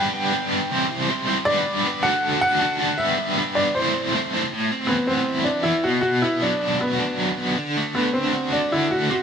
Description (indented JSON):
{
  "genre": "rock",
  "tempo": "157 BPM",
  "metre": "4/4",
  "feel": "straight",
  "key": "A dorian",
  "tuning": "A4 = 441 Hz",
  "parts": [
    { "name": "bright upright piano", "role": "melody", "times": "0.0-9.2 s", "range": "B3 to G5", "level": "-22 LUFS", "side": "equal", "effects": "plate reverb" },
    { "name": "biting overdriven guitar", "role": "riff", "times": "0.0-9.2 s", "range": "A2 to C5", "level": "-21 LUFS", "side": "equal", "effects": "tremolo" }
  ],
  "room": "moderate studio reverb, RT60 0.6 s",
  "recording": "none",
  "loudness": "-19 LUFS",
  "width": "side -7 dB against mid",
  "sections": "0.0-4.5 A section; 4.5-9.2 B section",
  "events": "none",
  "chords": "0.0 G; 0.7 C; 1.5 G; 2.0 D; 3.0 G; 3.7 Am; 4.5 Amadd9; 5.8 Bm; 7.6 D"
}